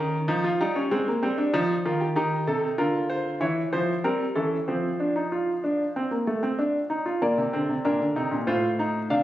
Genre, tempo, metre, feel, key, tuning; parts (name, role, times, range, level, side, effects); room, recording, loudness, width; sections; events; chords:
classical, baroque-style 3-part fugue for grand piano; 95 BPM; 4/4; straight; Bb major; A4 = 440 Hz
clear grand piano; solo; 0.0-9.2 s; A2 to F5; -23 LUFS; equal
moderate scoring stage reverb, RT60 1.4 s; recorded on a phone in the room, club reverb, compression; -23 LUFS; side -13 dB against mid
0.0-7.2 A section; 7.2-9.2 B section
0.0 Eb7; 0.9 Ab; 2.2 Cm; 3.4 Edim7; 4.7 F5; 7.2 Bb; 8.5 F7/A